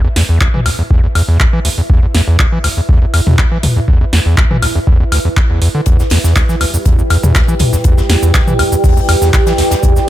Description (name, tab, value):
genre	acid house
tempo	121 BPM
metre	4/4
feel	straight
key	E minor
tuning	A4 = 443 Hz
part	overdriven acid bass	riff	0.0-10.0 s	D2 to E3	-13 LUFS	equal	distortion, tube saturation, sidechain pumping, tape echo
part	ethereal airy pad	texture	0.0-10.1 s	E4 to E5	-22 LUFS	right 2 dB	ensemble chorus, built-in reverb, sidechain pumping
part	electro analog drum machine	drums	0.2-10.1 s	handclaps, hi-hat, shaker, snare drum, toms, woodblock	-16 LUFS	left 1 dB	none
part	electronic kick drum	drums	0.4-9.9 s	none	-12 LUFS	equal	none
part	dark analog pad	sustained chords	6.7-10.1 s	G4 to G5	-18 LUFS	right 2 dB	chorus, sidechain pumping
part	modern studio drum kit	drums	5.9-10.1 s	hi-hat, snare drum	-27 LUFS	left 3 dB	sidechain pumping on hats, high-pass filter on hats, high-pass filter on snare, high-pass filter on room
room	little or no reverb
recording	none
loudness	-9 LUFS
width	side -13 dB against mid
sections	0.0-10.1 A section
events	fade-in on ambient pad 0.0-10.1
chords	0.0 Em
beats	0.41 0.91 1.40 | 1.90 2.39 2.89 3.38 | 3.88 4.38 4.87 5.37 | 5.86 6.36 6.86 7.35 | 7.85 8.34 8.84 9.34 | 9.83